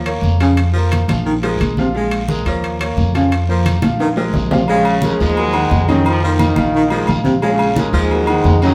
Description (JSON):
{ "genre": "latin, salsa", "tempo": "175 BPM", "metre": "4/4", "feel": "straight", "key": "Bb minor", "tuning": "A4 = 439 Hz", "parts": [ { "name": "breathy baritone saxophone", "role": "second line", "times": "0.0-8.7 s", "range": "C3 to Ab3", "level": "-22 LUFS", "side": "equal", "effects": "none" }, { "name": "upright bass", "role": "bass", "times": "0.0-8.7 s", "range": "Bb1 to F2", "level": "-20 LUFS", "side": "equal", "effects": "none" }, { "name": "bright upright piano", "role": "accompaniment", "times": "0.1-8.7 s", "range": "Eb3 to Gb5", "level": "-23 LUFS", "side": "equal", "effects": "none" }, { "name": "congas", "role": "percussion", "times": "0.1-8.6 s", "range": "none", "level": "-24 LUFS", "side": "equal", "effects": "none" }, { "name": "timbales and agogo bells", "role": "percussion", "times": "0.1-8.7 s", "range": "none", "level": "-27 LUFS", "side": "equal", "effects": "none" }, { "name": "guiro", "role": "percussion", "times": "0.2-8.7 s", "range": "none", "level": "-36 LUFS", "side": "equal", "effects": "none" }, { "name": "brilliant trombone section", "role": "melody", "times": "4.7-8.7 s", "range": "Gb2 to F4", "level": "-22 LUFS", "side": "equal", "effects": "none" } ], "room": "wet studio reverb, RT60 0.7 s", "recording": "heard from further back in the room", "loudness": "-16 LUFS", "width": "mono", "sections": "0.0-4.7 A section; 4.7-8.7 B section", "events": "drum fill 4.0-4.7", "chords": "0.0 Eb5; 0.6 Fsus4; 1.3 Bb7(no3); 2.6 Eb5; 3.3 Fsus4; 4.0 Bb5; 4.7 Bbm7; 5.4 Ebm7; 6.1 F7sus4; 6.7 Bbm7; 8.1 Ebm" }